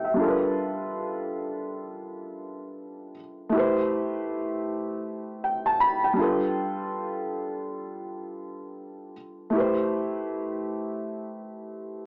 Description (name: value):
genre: hip hop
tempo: free time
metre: none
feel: none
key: A minor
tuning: A4 = 435 Hz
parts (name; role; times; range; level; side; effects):
- felt-muted upright piano; solo; 0.0-12.1 s; G3 to B5; -29 LUFS; equal; low-pass filter
room: moderate studio reverb, RT60 0.6 s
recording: worn, warbling old tape, cassette tape, warbly pitch drift, small speaker sound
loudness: -28 LUFS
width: mono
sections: 0.0-3.5 A section; 3.5-12.1 B section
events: none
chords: 0.2 G7; 3.5 Am9; 6.2 G7; 9.5 Am9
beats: free time